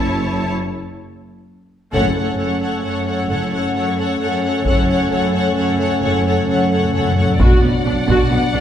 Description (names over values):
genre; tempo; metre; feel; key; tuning
cinematic, epic orchestral film score; 132 BPM; 3/4; straight; F# minor; A4 = 438 Hz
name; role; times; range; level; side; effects
rich symphonic violin section; melody; 0.0-8.6 s; F#5 to A5; -25 LUFS; left 2 dB; none
rich symphonic violin section; second line; 0.0-8.6 s; C#5 to D5; -25 LUFS; left 3 dB; none
rich symphonic viola section; accompaniment; 0.0-8.6 s; B3 to A4; -24 LUFS; equal; none
rich symphonic cello section; bass; 0.0-8.6 s; F#2 to B2; -22 LUFS; right 2 dB; none
rich symphonic double bass section; bass; 0.0-8.6 s; F#1 to B1; -25 LUFS; right 2 dB; none
mellow French horn section; sustained chords; 1.9-8.6 s; F#3 to D4; -21 LUFS; left 1 dB; none
taiko ensemble; drums; 1.9-8.5 s; none; -18 LUFS; equal; none
timpani; percussion; 1.9-8.0 s; F#2 to B2; -24 LUFS; left 1 dB; none
room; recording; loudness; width
wet recital hall reverb, RT60 1.5 s; recorded in a church or concert hall; -15 LUFS; side -10 dB against mid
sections
0.0-1.9 A section; 1.9-7.4 B section; 7.4-8.6 C section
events
break 0.5-1.9; band accent 1.9-2.4; timpani fill 4.7-7.4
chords
0.0 F#m7; 0.5 N.C.; 1.9 F#m; 7.4 Bm